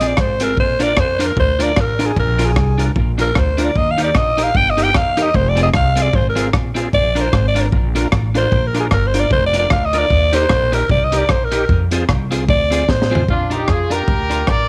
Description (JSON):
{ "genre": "ska", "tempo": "151 BPM", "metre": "4/4", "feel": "swing 57% on 8ths", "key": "Bb mixolydian", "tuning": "A4 = 440 Hz", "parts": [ { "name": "raspy alto saxophone", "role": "melody", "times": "0.0-13.3 s", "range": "Ab4 to G5", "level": "-20 LUFS", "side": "equal", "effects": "none" }, { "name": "electric guitar at the edge of break-up", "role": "accompaniment", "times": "0.0-14.4 s", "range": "C4 to Bb4", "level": "-27 LUFS", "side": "equal", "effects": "tape echo" }, { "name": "upright bass", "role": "bass", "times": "0.0-14.7 s", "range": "F1 to F2", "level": "-22 LUFS", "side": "equal", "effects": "none" }, { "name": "crunchy breakbeat drum kit", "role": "drums", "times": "0.0-14.6 s", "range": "hi-hat, kick drum, rim click, snare drum, toms", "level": "-22 LUFS", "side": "equal", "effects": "none" }, { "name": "bright tonewheel organ", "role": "stabs", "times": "0.8-13.2 s", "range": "C4 to C5", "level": "-28 LUFS", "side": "equal", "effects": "overdrive, chorus vibrato, slow rotary speaker" }, { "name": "warm horn section", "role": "melody", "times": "13.3-14.7 s", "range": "D4 to D5", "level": "-21 LUFS", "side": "equal", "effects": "none" } ], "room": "small room ambience", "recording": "none", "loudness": "-16 LUFS", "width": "mono", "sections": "0.0-13.3 A section; 13.3-14.7 B section", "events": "alto saxophone solo 0.0-13.3; drum fill 12.9-13.3", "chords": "0.0 Fm; 0.6 Bb; 3.8 Eb; 5.3 Fm; 6.9 Bb; 10.1 Eb; 11.7 Fm; 13.3 Bb" }